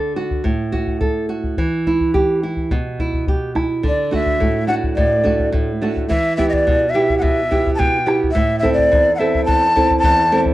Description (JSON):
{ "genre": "andean folk, Andean ensemble", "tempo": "106 BPM", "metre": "2/4", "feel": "straight", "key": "unclear", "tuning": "A4 = 440 Hz", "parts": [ { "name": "nylon-string guitar", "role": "accompaniment", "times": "0.0-10.5 s", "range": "E2 to A4", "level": "-18 LUFS", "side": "right 2 dB", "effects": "none" }, { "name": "bombo", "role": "percussion", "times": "0.3-10.5 s", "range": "none", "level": "-21 LUFS", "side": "left 1 dB", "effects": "none" }, { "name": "breathy large quena", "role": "melody", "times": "3.9-10.4 s", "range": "D5 to A5", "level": "-17 LUFS", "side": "left 1 dB", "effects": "plate reverb" } ], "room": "moderate studio reverb, RT60 0.6 s", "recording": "worn, warbling old tape, cassette tape, warbly pitch drift", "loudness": "-15 LUFS", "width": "side -15 dB against mid", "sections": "0.0-3.8 A section; 3.8-10.5 B section", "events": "none", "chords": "0.0 D; 1.6 Em; 3.8 D; 6.1 Em; 8.4 Am", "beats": "| 0.45 1.02 | 1.58 2.15 | 2.72 3.28 | 3.85 4.42 | 4.98 5.54 | 6.11 6.67 | 7.24 7.80 | 8.36 8.92 | 9.48 10.04" }